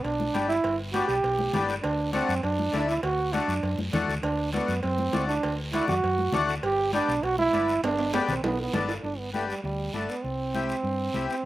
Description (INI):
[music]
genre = latin, cumbia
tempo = 200 BPM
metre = 4/4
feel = straight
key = G major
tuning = A4 = 440 Hz
[part]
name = warm trombone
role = second line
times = 0.0-11.5 s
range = G3 to G4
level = -27 LUFS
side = right 3 dB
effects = none
[part]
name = hollow-body short-scale fingered electric bass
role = bass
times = 0.0-11.3 s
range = G1 to G2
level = -32 LUFS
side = equal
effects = none
[part]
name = cowbell and timbales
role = percussion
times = 0.0-9.0 s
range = none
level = -35 LUFS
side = right 2 dB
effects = slapback echo
[part]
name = guiro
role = percussion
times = 0.0-11.4 s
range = none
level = -40 LUFS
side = right 2 dB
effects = none
[part]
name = congas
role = percussion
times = 0.2-11.3 s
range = none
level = -34 LUFS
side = left 3 dB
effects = none
[part]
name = accordion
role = accompaniment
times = 0.3-11.4 s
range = A3 to A4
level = -29 LUFS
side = left 5 dB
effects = slapback echo
[sound]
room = little or no reverb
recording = recorded outdoors, with no room sound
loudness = -24 LUFS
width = side -15 dB against mid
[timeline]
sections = 0.0-9.0 A section; 9.0-11.5 B section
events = trombone solo 0.0-9.0, 9.0-11.5; drum fill 7.8-9.0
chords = 0.0 G; 1.8 D; 6.6 G; 10.2 C